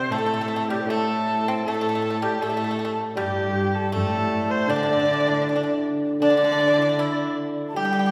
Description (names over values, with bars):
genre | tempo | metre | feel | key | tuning
chinese traditional, Chinese chamber ensemble | 78 BPM | 4/4 | rubato | D shang mode | A4 = 440 Hz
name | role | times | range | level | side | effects
rich erhu | melody | 0.0-8.1 s | G4 to G5 | -28 LUFS | equal | none
breathy bright large dizi | second line | 0.0-8.1 s | G4 to A5 | -31 LUFS | equal | none
pipa | second line | 0.0-8.1 s | G3 to G4 | -32 LUFS | equal | none
warm cello | second line | 0.0-8.1 s | G2 to G3 | -30 LUFS | equal | none
hammered dulcimer | accompaniment | 0.0-8.1 s | A2 to A4 | -30 LUFS | equal | none
room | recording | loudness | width
wet church reverb, RT60 2.8 s | recorded in a church or concert hall | -23 LUFS | mono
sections
0.0-8.1 A section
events
none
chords
none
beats
| 0.11 0.88 1.65 2.41 | 3.17 3.93 4.69 5.46 | 6.22 6.99 7.76